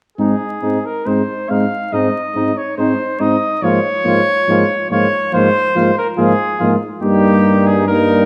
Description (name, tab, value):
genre	classical, brass quintet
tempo	70 BPM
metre	4/4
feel	rubato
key	Ab major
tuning	A4 = 441 Hz
part	mellow trumpet	melody	0.2-8.3 s	G4 to F5	-20 LUFS	equal	none
part	mellow flugelhorn	second line	0.2-8.3 s	Eb4 to F4	-24 LUFS	equal	none
part	dark French horn	accompaniment	0.2-8.3 s	Bb3 to C4	-22 LUFS	equal	none
part	dark trombone	accompaniment	0.2-8.3 s	F3 to Ab3	-23 LUFS	equal	none
part	warm bass trombone	bass	0.2-8.3 s	G2 to Ab2	-22 LUFS	equal	none
room	wet recital hall reverb, RT60 1.5 s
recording	vinyl crackle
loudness	-15 LUFS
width	mono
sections	0.2-8.3 A section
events	none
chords	0.2 Ab; 3.6 Bbm7/Ab; 7.0 Eb/G